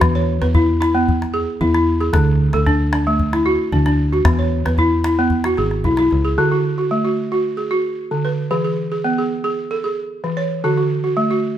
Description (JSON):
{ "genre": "west african traditional, West African string and xylophone music", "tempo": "113 BPM", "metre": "4/4", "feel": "straight", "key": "D lydian", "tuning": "A4 = 440 Hz", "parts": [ { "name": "balafon", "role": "arpeggios", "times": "0.0-11.6 s", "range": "D3 to C#5", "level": "-17 LUFS", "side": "right 1 dB", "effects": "none" }, { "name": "fingered electric bass", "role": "bass", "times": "0.0-6.4 s", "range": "G#1 to E2", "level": "-19 LUFS", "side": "equal", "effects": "none" }, { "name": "calabash", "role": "percussion", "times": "0.0-6.2 s", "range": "none", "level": "-21 LUFS", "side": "left 1 dB", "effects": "none" } ], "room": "moderate large studio reverb, RT60 1.3 s", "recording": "band playing live in one room", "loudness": "-15 LUFS", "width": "side -10 dB against mid", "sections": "0.0-6.4 A section; 6.4-11.6 B section", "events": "none", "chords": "0.0 E; 2.1 D; 4.3 E; 6.4 D; 8.5 E; 10.6 D", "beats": "| 0.02 0.55 1.08 1.61 | 2.14 2.67 3.20 3.73 | 4.26 4.79 5.32 5.85 | 6.38 6.91 7.45 7.98 | 8.51 9.04 9.57 10.11 | 10.64 11.17" }